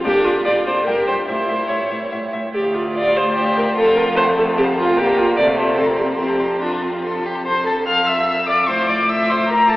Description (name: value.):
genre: quick classical-period movement for string quartet.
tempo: 146 BPM.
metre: 3/4.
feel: rubato.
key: F major from 5.0 s.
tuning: A4 = 445 Hz.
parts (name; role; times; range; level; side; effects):
warm violin; melody; 0.0-9.8 s; D5 to F6; -22 LUFS; left 2 dB; none.
warm violin; second line; 0.0-9.8 s; A3 to F5; -22 LUFS; equal; none.
warm viola; accompaniment; 0.1-9.8 s; F4 to D5; -18 LUFS; equal; none.
rich cello; bass; 0.1-9.8 s; D2 to C3; -26 LUFS; equal; none.
room: wet cathedral reverb, RT60 4.6 s.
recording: heard from further back in the room, AM radio sound.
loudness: -15 LUFS.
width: side -18 dB against mid.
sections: 0.0-7.5 A section; 7.5-9.8 B section.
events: none.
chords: 0.1 Bb; 0.9 Gm; 1.3 A; 2.5 Dm; 3.8 F; 5.0 Gm7/Bb; 5.4 F/C; 5.8 C5; 6.2 F; 8.7 F/A.